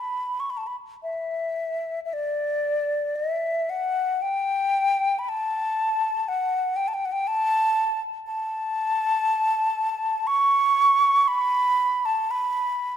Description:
celtic folk; 59 BPM; 3/4; uneven beats, rubato; A4 = 440 Hz
wooden flute; solo; 0.0-13.0 s; D5 to C#6; -22 LUFS; equal
moderate concert hall reverb, RT60 2.1 s; minimal, uncompressed stereo recording; -21 LUFS; side -9 dB against mid
0.0-2.1 A section; 2.1-13.0 A section

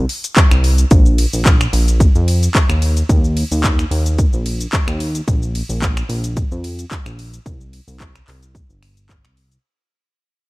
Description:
nu-disco, nu disco; 110 BPM; 4/4; swing 54% on 16ths; A4 = 440 Hz
chorused synth bass; bass; 0.0-9.6 s; G1 to F2; -17 LUFS; equal; tube saturation
house drum kit; drums; 0.1-9.6 s; cabasa, finger snaps, handclaps, hi-hat, ride cymbal; -22 LUFS; left 1 dB; overdrive, studio ambience
electronic kick drum; drums; 0.4-9.2 s; -14 LUFS; equal; overdrive, studio ambience
digital ambience; dark, warm production; -13 LUFS; side -21 dB against mid
0.0-9.6 A section
drop 0.0-9.6; fade-out 0.9-9.6

